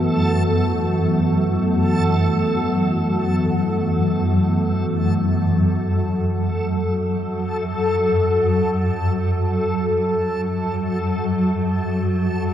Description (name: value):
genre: dark ambient drone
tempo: free time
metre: none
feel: none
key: F# minor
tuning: A4 = 440 Hz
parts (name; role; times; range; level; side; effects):
- sweeping resonant pad; sustained chords; 0.0-5.6 s; F#2 to B3; -22 LUFS; equal; chorus
- swarming drone; drone; 0.0-12.5 s; F#2 to F#3; -20 LUFS; equal; built-in reverb
- backwards swelling texture; texture; 0.0-12.5 s; A4; -24 LUFS; left 1 dB; built-in reverb
room: wet cathedral reverb, RT60 5.6 s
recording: in a vast, echoing space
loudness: -18 LUFS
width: side -10 dB against mid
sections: 0.0-5.6 A section; 5.6-12.5 B section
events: none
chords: 0.0 F#m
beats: free time